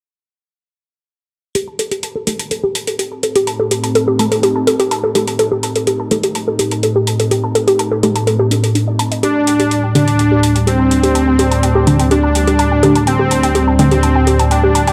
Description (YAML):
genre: melodic techno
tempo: 125 BPM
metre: 4/4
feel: straight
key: unclear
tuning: A4 = 439 Hz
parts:
  - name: sweeping resonant pad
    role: sustained chords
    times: 3.2-14.9 s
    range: D2 to Eb4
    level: -19 LUFS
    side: equal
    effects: chorus
  - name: warbly dusty pluck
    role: arpeggios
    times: 1.6-14.9 s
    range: D4 to A5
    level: -19 LUFS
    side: equal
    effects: chorus, dub echo
  - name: electronic hi-hat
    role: drums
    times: 1.6-14.9 s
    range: none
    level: -24 LUFS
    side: equal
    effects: none
  - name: filtered dub chord stab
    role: stabs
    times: 2.3-14.9 s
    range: D3 to A4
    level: -20 LUFS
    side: equal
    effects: chorus
  - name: soft supersaw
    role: melody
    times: 9.2-14.9 s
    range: C4 to D4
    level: -17 LUFS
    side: equal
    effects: vintage 12-bit sampler grit, digital delay
room: moderate recital hall reverb, RT60 1.5 s, digital ambience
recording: dark, warm production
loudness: -14 LUFS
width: mono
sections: 1.6-14.9 A section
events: filter sweep on synth arpeggio sound 1.6-14.9; filter sweep on analog synth pad 1.6-14.9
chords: 1.6 Adim; 9.2 Dsus4